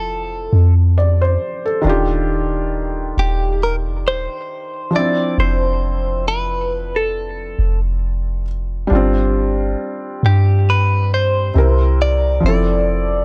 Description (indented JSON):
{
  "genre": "contemporary R&B",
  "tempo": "68 BPM",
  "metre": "4/4",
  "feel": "swing 54% on 16ths",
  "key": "D dorian",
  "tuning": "A4 = 440 Hz",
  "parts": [
    { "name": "direct-recorded clean electric guitar", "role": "melody", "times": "0.0-13.2 s", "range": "G4 to D5", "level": "-23 LUFS", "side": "equal", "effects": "phaser" },
    { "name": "felt-muted upright piano", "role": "accompaniment", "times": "0.0-13.2 s", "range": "C3 to D5", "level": "-24 LUFS", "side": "equal", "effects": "none" },
    { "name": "soft 808-style bass", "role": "bass", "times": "0.0-13.2 s", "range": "Eb1 to G2", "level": "-19 LUFS", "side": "equal", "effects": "none" }
  ],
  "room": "small room ambience",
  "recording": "dry, gritty hardware recording, transformer saturation, cassette tape",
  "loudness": "-17 LUFS",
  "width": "mono",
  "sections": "0.0-13.2 A section",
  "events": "none",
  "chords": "0.0 Fmaj7; 1.9 Ebmaj9; 4.9 Dm7/F; 8.9 G7sus4; 11.6 C7; 12.4 Fmaj7",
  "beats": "0.09 0.97 | 1.85 2.73 3.62 4.50 | 5.38 6.26 7.14 8.03 | 8.91 9.79 10.67 11.56 | 12.44"
}